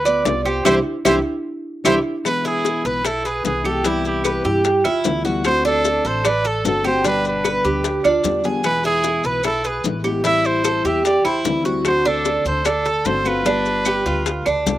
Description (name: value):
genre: latin, Cuban son and guajira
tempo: 150 BPM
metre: 4/4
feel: straight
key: C major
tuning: A4 = 440 Hz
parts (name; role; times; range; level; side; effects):
- clear trumpet; melody; 0.0-14.7 s; G4 to E5; -21 LUFS; right 2 dB; none
- nylon-string guitar; accompaniment; 0.0-14.8 s; B2 to G4; -25 LUFS; left 4 dB; slapback echo
- Cuban tres; arpeggios; 0.0-14.8 s; D4 to D5; -20 LUFS; right 2 dB; slapback echo
- upright bass; bass; 0.0-14.8 s; G1 to G2; -28 LUFS; equal; none
- maracas; percussion; 0.1-14.8 s; none; -29 LUFS; left 6 dB; none
- bongos; percussion; 0.3-14.8 s; none; -25 LUFS; left 8 dB; none
- claves; percussion; 0.5-14.7 s; none; -30 LUFS; right 5 dB; none
- marimba with medium hard mallets; second line; 0.6-2.0, 4.4-8.5 s; D4 to G4; -26 LUFS; right 2 dB; none
room: little or no reverb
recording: recorded outdoors, with no room sound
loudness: -16 LUFS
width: side -14 dB against mid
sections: 0.0-2.3 A section; 2.3-14.8 B section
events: band accent 0.7-2.3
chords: 0.0 G7; 0.7 Cadd9; 2.3 E; 3.8 Cmaj7; 5.4 D7; 7.0 G; 8.6 E; 10.2 Am7; 11.8 D7; 13.5 G7